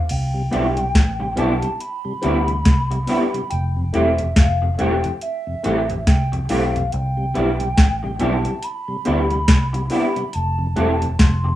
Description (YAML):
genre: lovers rock reggae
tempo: 70 BPM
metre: 4/4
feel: swing 59% on 16ths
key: C major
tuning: A4 = 441 Hz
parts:
  - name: hollow clarinet-like synth lead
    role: melody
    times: 0.0-11.6 s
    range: E5 to C6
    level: -26 LUFS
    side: right 1 dB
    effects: chorus, tape echo, plate reverb
  - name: vintage muted fingered electric bass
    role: bass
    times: 0.1-11.6 s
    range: E1 to D2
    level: -22 LUFS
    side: equal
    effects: none
  - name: soft vintage rhythm box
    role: drums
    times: 0.1-11.4 s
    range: crash cymbal, hi-hat, kick drum, snare drum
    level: -16 LUFS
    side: equal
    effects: none
  - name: mellow tonewheel organ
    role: accompaniment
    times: 0.3-11.5 s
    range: F2 to E4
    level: -27 LUFS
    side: left 1 dB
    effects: slow rotary speaker
  - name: dark concert grand piano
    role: accompaniment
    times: 0.5-10.9 s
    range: A3 to G4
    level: -27 LUFS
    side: left 3 dB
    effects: slapback echo
  - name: electric guitar through a small old amp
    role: stabs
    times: 0.5-11.5 s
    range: E3 to G4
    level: -22 LUFS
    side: right 1 dB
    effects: ensemble chorus, slapback echo
room: moderate studio reverb, RT60 0.6 s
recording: rough home demo mix, small room ambience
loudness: -17 LUFS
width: side -14 dB against mid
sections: 0.1-11.6 A section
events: none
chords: 0.1 Cmaj7; 3.5 Fmaj9; 6.9 Cmaj7; 10.3 Fmaj9